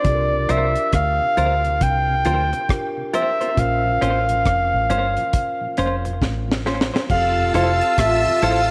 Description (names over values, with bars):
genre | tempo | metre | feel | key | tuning
lovers rock reggae | 68 BPM | 4/4 | swing 62% on 16ths | F major | A4 = 440 Hz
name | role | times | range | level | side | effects
warm flugelhorn | melody | 0.0-8.7 s | D5 to G5 | -22 LUFS | equal | tape echo
mellow tine electric piano | accompaniment | 0.0-8.7 s | C4 to C5 | -32 LUFS | equal | none
deep reggae drum kit | drums | 0.0-8.7 s | crash cymbal, hi-hat, kick drum, rim click, snare drum | -26 LUFS | equal | none
deep dub fingered electric bass | bass | 0.1-8.7 s | F1 to D2 | -25 LUFS | equal | none
mellow tonewheel organ | accompaniment | 0.3-8.5 s | F2 to E4 | -37 LUFS | equal | none
clean electric guitar | stabs | 0.5-8.6 s | Db4 to C5 | -29 LUFS | equal | subtle chorus, slapback echo
string machine, violins | second line | 7.1-8.7 s | F4 to E6 | -26 LUFS | equal | ensemble chorus
room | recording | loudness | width
moderate echo chamber reverb, RT60 2.5 s | none | -19 LUFS | mono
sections
0.0-7.1 A section; 7.1-8.7 B section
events
drum fill 6.2-7.1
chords
0.0 C7sus4; 3.6 Bbmadd9; 7.1 Fmaj7